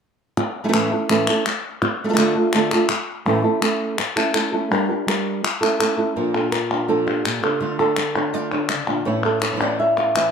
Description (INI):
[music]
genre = flamenco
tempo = 166 BPM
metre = 4/4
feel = straight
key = A phrygian dominant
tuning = A4 = 443 Hz
[part]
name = flamenco guitar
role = melody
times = 0.4-10.3 s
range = A2 to F5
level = -20 LUFS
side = right 2 dB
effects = plate reverb
[part]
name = palmas hand claps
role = percussion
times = 0.4-10.3 s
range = none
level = -23 LUFS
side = left 4 dB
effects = none
[part]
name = flamenco guitar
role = stabs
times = 6.2-10.3 s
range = A2 to F4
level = -26 LUFS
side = right 2 dB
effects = none
[sound]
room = moderate studio reverb, RT60 0.6 s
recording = none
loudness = -18 LUFS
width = side -6 dB against mid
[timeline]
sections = 0.4-6.2 A section; 6.2-10.3 B section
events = none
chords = 0.4 A; 1.8 Dm; 3.3 A; 4.7 Gm; 5.4 A; 6.2 Bb; 7.6 Dm; 9.1 A